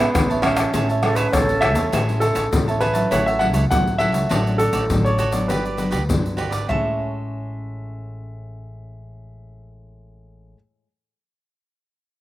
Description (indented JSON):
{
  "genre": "samba and choro",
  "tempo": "101 BPM",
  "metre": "4/4",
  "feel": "straight",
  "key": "A major",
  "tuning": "A4 = 441 Hz",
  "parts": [
    { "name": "warm baby grand piano", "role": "melody", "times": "0.0-10.5 s", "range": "B3 to F#5", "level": "-23 LUFS", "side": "equal", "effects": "none" },
    { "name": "cavaquinho", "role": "accompaniment", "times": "0.0-10.6 s", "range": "E4 to A5", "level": "-25 LUFS", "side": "right 4 dB", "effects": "slapback echo" },
    { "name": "nylon-string guitar", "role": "accompaniment", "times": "0.0-10.6 s", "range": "G2 to E4", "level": "-28 LUFS", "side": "left 1 dB", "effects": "slapback echo" },
    { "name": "upright bass", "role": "bass", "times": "0.0-10.5 s", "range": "G1 to E2", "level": "-25 LUFS", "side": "equal", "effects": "none" },
    { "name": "tube shaker, surdo, pandeiro and tamborim", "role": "percussion", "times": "0.1-6.8 s", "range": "none", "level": "-23 LUFS", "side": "left 1 dB", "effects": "none" },
    { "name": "breathy concert flute", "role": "second line", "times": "1.0-1.9 s", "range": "A4 to B4", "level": "-23 LUFS", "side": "right 3 dB", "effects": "none" }
  ],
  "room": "little or no reverb",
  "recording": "recorded outdoors, with no room sound",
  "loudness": "-17 LUFS",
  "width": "side -15 dB against mid",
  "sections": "0.0-1.9 A section; 1.9-6.7 B section; 6.7-9.1 C section",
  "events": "none",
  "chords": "0.0 Amaj7; 3.1 F#m7/A; 4.3 Dmaj7/A; 5.5 Gmaj7; 6.7 Amaj7"
}